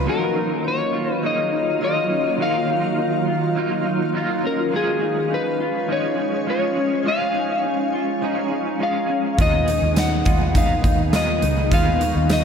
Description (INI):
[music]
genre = dream pop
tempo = 103 BPM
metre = 4/4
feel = straight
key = Eb minor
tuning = A4 = 440 Hz
[part]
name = electric slide guitar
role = melody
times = 0.0-12.4 s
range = Ab4 to Gb5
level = -23 LUFS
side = left 3 dB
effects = analog delay
[part]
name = clean electric guitar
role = accompaniment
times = 0.0-12.4 s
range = Eb3 to Ab4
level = -28 LUFS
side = right 5 dB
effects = tremolo, ensemble chorus, analog delay
[part]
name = shimmering ambient pad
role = sustained chords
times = 0.0-12.4 s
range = Eb3 to F4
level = -25 LUFS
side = equal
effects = chorus, built-in reverb
[part]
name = mellow electric guitar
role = arpeggios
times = 0.0-12.4 s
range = Db4 to Gb4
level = -26 LUFS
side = left 1 dB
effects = lush chorus, analog delay
[part]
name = vintage muted fingered electric bass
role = bass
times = 0.0-0.1, 9.4-12.4 s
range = Db2 to Eb2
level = -22 LUFS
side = equal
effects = none
[part]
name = vibraphone with medium hard mallets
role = texture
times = 0.0-12.4 s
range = Ab4 to Eb6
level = -35 LUFS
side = right 1 dB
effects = analog delay
[part]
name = huge arena drum kit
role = drums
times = 9.4-12.4 s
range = hi-hat, kick drum, snare drum, tambourine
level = -22 LUFS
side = equal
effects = none
[sound]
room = moderate spring reverb, RT60 2.6 s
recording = echo-heavy mix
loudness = -18 LUFS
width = side -7 dB against mid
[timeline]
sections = 0.1-12.4 A section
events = none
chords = 0.1 Ebmadd9; 4.7 Db/F; 9.4 Abm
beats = | 0.07 0.65 1.23 1.81 | 2.40 2.98 3.56 4.14 | 4.72 5.31 5.89 6.47 | 7.05 7.64 8.22 8.80 | 9.39 9.97 10.55 11.13 | 11.72 12.30